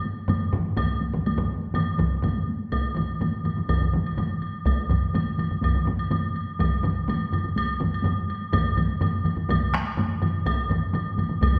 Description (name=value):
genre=japanese traditional, taiko drum ensemble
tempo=124 BPM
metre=4/4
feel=straight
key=none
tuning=none
part: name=taiko ensemble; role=percussion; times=0.0-11.6 s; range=none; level=-34 LUFS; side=equal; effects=none
part: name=taiko ensemble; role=percussion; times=0.3-11.6 s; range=none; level=-30 LUFS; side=equal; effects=none
part: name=taiko ensemble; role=percussion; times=0.3-11.6 s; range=none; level=-31 LUFS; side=equal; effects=none
part: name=woodblock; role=percussion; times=0.3-11.5 s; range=none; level=-35 LUFS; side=equal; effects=none
part: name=taiko ensemble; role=percussion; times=0.8-11.5 s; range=none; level=-30 LUFS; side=equal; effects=none
room=wet recital hall reverb, RT60 1.5 s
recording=recorded in a church or concert hall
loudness=-25 LUFS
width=mono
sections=0.0-2.7 A section; 2.7-11.6 B section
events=none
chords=none